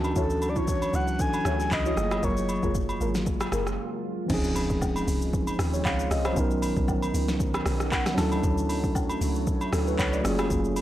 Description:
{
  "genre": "amapiano",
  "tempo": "116 BPM",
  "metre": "4/4",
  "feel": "swing 55% on 16ths",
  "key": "unclear",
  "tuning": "A4 = 442 Hz",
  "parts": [
    { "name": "mellow tine electric piano", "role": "accompaniment", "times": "0.0-10.8 s", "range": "E3 to A5", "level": "-28 LUFS", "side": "right 1 dB", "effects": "none" },
    { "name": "deep dark ambient pad", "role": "sustained chords", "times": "0.0-10.8 s", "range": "Db3 to C#5", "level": "-35 LUFS", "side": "equal", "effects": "chorus, built-in reverb, sidechain pumping" },
    { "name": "deep log drum bass", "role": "bass", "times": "0.0-10.8 s", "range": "Gb1 to Eb2", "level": "-30 LUFS", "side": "equal", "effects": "none" },
    { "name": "smooth R&B drum kit", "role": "drums", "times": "0.0-10.8 s", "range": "crash cymbal, handclaps, hi-hat, kick drum, rim click, shaker, snare drum", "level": "-30 LUFS", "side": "equal", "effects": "none" },
    { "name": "agogo bells and woodblock", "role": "percussion", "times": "0.0-10.8 s", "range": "none", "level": "-37 LUFS", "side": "right 1 dB", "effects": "none" },
    { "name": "breathy flute-like synth lead", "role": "melody", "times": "0.2-2.8 s", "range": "A4 to Ab5", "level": "-31 LUFS", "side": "left 1 dB", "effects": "chorus, analog delay" },
    { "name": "deep mellow chord stab", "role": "stabs", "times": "0.2-3.6 s", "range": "E4 to C#5", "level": "-35 LUFS", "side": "left 2 dB", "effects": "chorus, phaser, analog delay" },
    { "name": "impact", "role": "sound effects", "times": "4.3-6.4 s", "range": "none", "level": "-40 LUFS", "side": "equal", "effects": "none" }
  ],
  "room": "little or no reverb",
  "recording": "dry, gritty hardware recording, transformer saturation",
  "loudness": "-24 LUFS",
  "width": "side -13 dB against mid",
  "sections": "0.0-4.3 A section; 4.3-10.8 B section",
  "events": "tine electric piano fill 0.0, 7.7-8.4; break 3.8-4.3; drop 4.3-10.8; impact 4.3-6.4",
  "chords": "0.0 Dmaj9; 2.0 Gbmaj9; 4.3 Dbmaj9; 6.4 Cbmaj9; 8.2 Dmaj9; 10.2 Gbmaj9",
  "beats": "| 0.16 0.68 1.20 1.71 | 2.23 2.75 3.26 3.78 | 4.30 4.82 5.33 5.85 | 6.37 6.88 7.40 7.92 | 8.44 8.95 9.47 9.99 | 10.51"
}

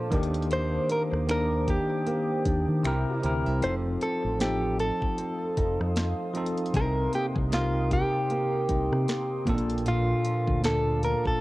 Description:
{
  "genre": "contemporary R&B",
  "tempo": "77 BPM",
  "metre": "4/4",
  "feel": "swing 58% on 16ths",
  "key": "unclear",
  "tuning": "A4 = 442 Hz",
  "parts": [
    { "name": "direct-recorded clean electric guitar", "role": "melody", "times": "0.0-11.4 s", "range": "F4 to C5", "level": "-30 LUFS", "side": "equal", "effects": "cassette tape" },
    { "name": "bell-like tine electric piano", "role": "accompaniment", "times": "0.0-11.4 s", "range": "Bb2 to Bb4", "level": "-30 LUFS", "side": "equal", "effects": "medium stereo tremolo" },
    { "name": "deep dark ambient pad", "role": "sustained chords", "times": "0.0-11.4 s", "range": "A4 to Eb6", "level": "-39 LUFS", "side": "right 2 dB", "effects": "chorus, built-in reverb, sidechain pumping" },
    { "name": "nylon-string guitar", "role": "arpeggios", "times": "0.0-11.4 s", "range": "Bb2 to A4", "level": "-35 LUFS", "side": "right 2 dB", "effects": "none" },
    { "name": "deep dub fingered electric bass", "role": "bass", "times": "0.1-11.1 s", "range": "F1 to Eb3", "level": "-29 LUFS", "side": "equal", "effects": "none" },
    { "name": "trap drum kit", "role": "drums", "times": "0.1-11.4 s", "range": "finger snaps, hi-hat, kick drum, rim click, snare drum", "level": "-31 LUFS", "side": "equal", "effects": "none" }
  ],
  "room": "digital ambience",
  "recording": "home recording on cassette",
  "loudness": "-24 LUFS",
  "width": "side -19 dB against mid",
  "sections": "0.0-11.4 A section",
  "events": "kick muted 3.6-4.4",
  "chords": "0.1 Ebmaj7; 2.8 C7; 3.6 F7; 6.7 Cm7; 9.5 Bbmaj7",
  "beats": "| 0.51 1.29 2.06 2.84 | 3.62 4.40 5.18 5.96 | 6.74 7.52 8.30 9.08 | 9.86 10.64"
}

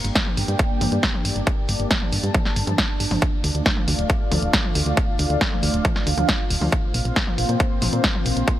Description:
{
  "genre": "uplifting trance",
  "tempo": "137 BPM",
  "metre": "4/4",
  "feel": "straight",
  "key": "G minor",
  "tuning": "A4 = 442 Hz",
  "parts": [
    { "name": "lush unison pad", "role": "sustained chords", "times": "0.0-8.6 s", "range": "A3 to A5", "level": "-26 LUFS", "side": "equal", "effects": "chorus, phaser, sidechain pumping" },
    { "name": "solid FM bass", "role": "bass", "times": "0.0-8.4 s", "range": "D1 to Bb2", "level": "-23 LUFS", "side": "equal", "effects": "sidechain pumping" },
    { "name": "punchy analog drum machine", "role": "drums", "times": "0.0-8.6 s", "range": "hi-hat, snare drum, toms", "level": "-24 LUFS", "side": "equal", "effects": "none" },
    { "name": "electronic kick drum", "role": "drums", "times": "0.2-8.6 s", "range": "none", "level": "-22 LUFS", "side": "equal", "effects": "overdrive" }
  ],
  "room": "digital ambience",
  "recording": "lossy compression artefacts",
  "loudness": "-19 LUFS",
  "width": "side -13 dB against mid",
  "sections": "0.0-8.6 A section",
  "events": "filter sweep on analog synth pad 0.0-8.6",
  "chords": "0.0 Gm; 3.2 Dm; 6.7 Bbsus2",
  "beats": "0.15 0.59 1.03 | 1.47 1.91 2.35 2.78 | 3.22 3.66 4.10 4.54 | 4.97 5.41 5.85 6.29 | 6.72 7.16 7.60 8.04 | 8.48"
}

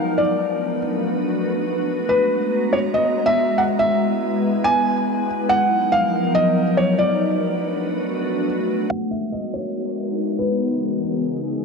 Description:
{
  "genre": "IDM",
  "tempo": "141 BPM",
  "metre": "4/4",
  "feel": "straight",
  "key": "G# minor",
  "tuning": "A4 = 440 Hz",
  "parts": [
    { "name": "felt-muted upright piano", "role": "melody", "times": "0.0-11.0 s", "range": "B4 to G#5", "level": "-21 LUFS", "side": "equal", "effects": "digital delay" },
    { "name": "glassy FM pad", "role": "sustained chords", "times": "0.0-11.6 s", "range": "C#3 to A#5", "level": "-21 LUFS", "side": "left 1 dB", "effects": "ensemble chorus, built-in reverb, vintage 12-bit sampler grit" }
  ],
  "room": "wet huge ambient reverb, RT60 4.5 s",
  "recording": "dark, warm production, low-pass filter",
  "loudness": "-18 LUFS",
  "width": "side -4 dB against mid",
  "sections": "0.0-8.9 A section; 8.9-11.6 B section",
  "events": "filter sweep on ambient pad 8.9-11.6; filter sweep 8.9-11.6",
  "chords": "0.4 Bm7; 2.1 G#m9; 3.8 E/G#; 5.5 D#madd9; 7.2 Bm7; 8.9 G#m9; 10.6 C#m9",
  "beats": "| 0.40 0.83 1.25 1.68 | 2.10 2.53 2.96 3.38 | 3.81 4.23 4.66 5.08 | 5.51 5.93 6.36 6.79 | 7.21 7.64 8.06 8.49 | 8.91 9.34 9.76 10.19 | 10.62 11.04 11.47"
}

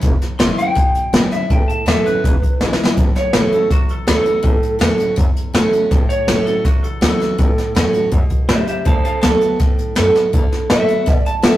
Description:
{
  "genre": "rockabilly",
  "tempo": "163 BPM",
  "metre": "4/4",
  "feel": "straight",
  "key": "A major",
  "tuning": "A4 = 440 Hz",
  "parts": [
    { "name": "picked steel-string acoustic guitar", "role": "accompaniment", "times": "0.0-11.6 s", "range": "E2 to F#4", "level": "-19 LUFS", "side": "right 1 dB", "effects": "none" },
    { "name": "upright bass", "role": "bass", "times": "0.0-11.6 s", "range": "E1 to D3", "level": "-24 LUFS", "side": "equal", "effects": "none" },
    { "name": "jazz brush drum kit", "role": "drums", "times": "0.0-11.5 s", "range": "hi-hat, kick drum, snare drum", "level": "-15 LUFS", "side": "equal", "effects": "none" },
    { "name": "electric guitar through a small old amp", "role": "melody", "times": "0.4-11.6 s", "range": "F#4 to C6", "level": "-22 LUFS", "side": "left 1 dB", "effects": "none" }
  ],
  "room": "light reverb",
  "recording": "rough rehearsal-room recording, tube saturation",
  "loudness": "-13 LUFS",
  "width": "side -14 dB against mid",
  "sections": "0.0-3.0 A section; 3.0-11.6 A section",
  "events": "drum fill 2.6-3.0",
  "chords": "0.0 E6; 1.5 A6; 2.2 E6; 3.0 A6; 8.9 D6",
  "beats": "| 0.04 0.41 0.77 1.14 | 1.50 1.87 2.24 2.60 | 2.97 3.34 3.71 4.08 | 4.44 4.81 5.18 5.55 | 5.92 6.28 6.65 7.02 | 7.39 7.76 8.12 8.49 | 8.86 9.23 9.60 9.97 | 10.34 10.70 11.07 11.44"
}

